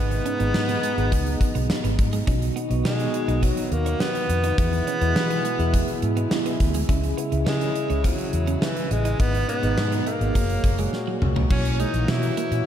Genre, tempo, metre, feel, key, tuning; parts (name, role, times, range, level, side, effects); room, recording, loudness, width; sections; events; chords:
1980s-style pop; 104 BPM; 4/4; straight; B major; A4 = 440 Hz
clear tenor saxophone; melody; 0.0-12.7 s; E3 to E4; -28 LUFS; equal; diffuse ambient delay
mellow tine electric piano; accompaniment; 0.0-12.7 s; G#2 to E5; -28 LUFS; equal; medium stereo tremolo
chorused pulse-width pad; sustained chords; 0.0-12.7 s; A#2 to F#4; -33 LUFS; equal
vintage muted fingered electric bass; bass; 0.0-12.6 s; F#1 to E3; -24 LUFS; equal
twelve-string electric guitar; riff; 0.1-12.6 s; F#3 to D#4; -35 LUFS; right 6 dB; lush chorus, diffuse ambient delay
gated 80s drum kit; drums; 0.1-12.7 s; crash cymbal, hi-hat, kick drum, snare drum, toms; -25 LUFS; equal
moderate lush hall reverb, RT60 2.1 s; dreamy mix soaked in reverb; -20 LUFS; side -10 dB against mid
0.0-11.5 A section; 11.5-12.7 B section
drum fill 10.9-11.5
0.0 G#m; 2.3 B; 4.6 E; 6.9 C#m; 9.2 G#m; 10.4 F#add9; 11.5 F#7